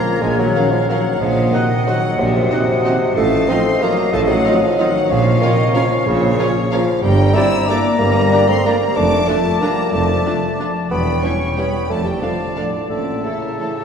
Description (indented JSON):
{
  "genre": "classical, orchestral ballroom waltz",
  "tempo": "185 BPM",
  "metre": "3/4",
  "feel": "uneven beats, rubato",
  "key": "Bb minor, D minor from 7.0 s",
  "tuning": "A4 = 440 Hz",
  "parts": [
    { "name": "rich symphonic violin section", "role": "melody", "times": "0.0-13.8 s", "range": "C5 to E6", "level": "-28 LUFS", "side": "left 3 dB", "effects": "none" },
    { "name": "bright silver concert flute", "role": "second line", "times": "0.0-13.8 s", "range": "Db5 to Bb5", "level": "-26 LUFS", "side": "left 2 dB", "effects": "none" },
    { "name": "warm oboe", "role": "second line", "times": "0.0-13.8 s", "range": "Bb4 to E5", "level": "-27 LUFS", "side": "equal", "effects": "none" },
    { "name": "mellow bassoon", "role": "accompaniment", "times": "0.0-13.8 s", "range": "C3 to E4", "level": "-19 LUFS", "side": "equal", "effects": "none" },
    { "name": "mellow trombone section", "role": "sustained chords", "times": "0.0-13.7 s", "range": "D3 to Db4", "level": "-28 LUFS", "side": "right 1 dB", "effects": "none" },
    { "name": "warm French horn section", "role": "sustained chords", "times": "0.0-13.8 s", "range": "Gb2 to C4", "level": "-23 LUFS", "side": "left 2 dB", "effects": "none" },
    { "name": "mellow trumpet section", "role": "stabs", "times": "0.0-13.7 s", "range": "C#5 to Gb5", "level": "-26 LUFS", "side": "right 1 dB", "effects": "none" },
    { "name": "clear studio cello section", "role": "bass", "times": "0.2-13.2 s", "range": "E2 to Bb2", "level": "-24 LUFS", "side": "right 2 dB", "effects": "none" },
    { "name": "clear symphonic double bass section", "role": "bass", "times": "0.2-13.2 s", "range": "E1 to Bb1", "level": "-23 LUFS", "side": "right 1 dB", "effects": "none" },
    { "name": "warm tuba", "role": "bass", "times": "0.2-13.2 s", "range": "E1 to Bb1", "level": "-26 LUFS", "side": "right 2 dB", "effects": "none" },
    { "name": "rich symphonic viola section", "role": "accompaniment", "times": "0.5-13.7 s", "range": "Db4 to Bb4", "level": "-28 LUFS", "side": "right 2 dB", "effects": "none" },
    { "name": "clear studio violin section", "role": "second line", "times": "0.6-13.8 s", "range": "F4 to Bb5", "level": "-33 LUFS", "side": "left 1 dB", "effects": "none" }
  ],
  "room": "wet concert hall reverb, RT60 2.5 s",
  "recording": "heard from further back in the room",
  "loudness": "-14 LUFS",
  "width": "side -7 dB against mid",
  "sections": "0.0-13.8 A section",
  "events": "none",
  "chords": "0.0 Bbm; 1.2 Cm7b5/Bb; 3.2 F7/A; 5.1 Bbm; 7.0 Gm; 9.0 Dm/F; 10.9 C#dim/E; 11.9 Dm/F; 12.9 A"
}